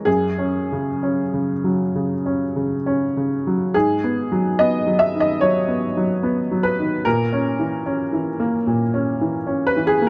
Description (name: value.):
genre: neoclassical minimalist piano.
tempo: 63-75 BPM.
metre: 4/4.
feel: rubato.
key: G# minor.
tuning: A4 = 440 Hz.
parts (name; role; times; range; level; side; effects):
clear upright piano; solo; 0.0-10.1 s; F#2 to E5; -20 LUFS; equal; none.
room: light reverb.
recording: dark, warm production.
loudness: -21 LUFS.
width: mono.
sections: 0.0-3.7 A section; 3.7-10.1 A section.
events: none.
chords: 0.1 F#sus2; 3.7 G#m7; 7.0 A#dim.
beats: | 0.06 1.01 1.93 2.84 | 3.74 4.59 5.41 6.23 | 7.05 7.86 8.66 9.47.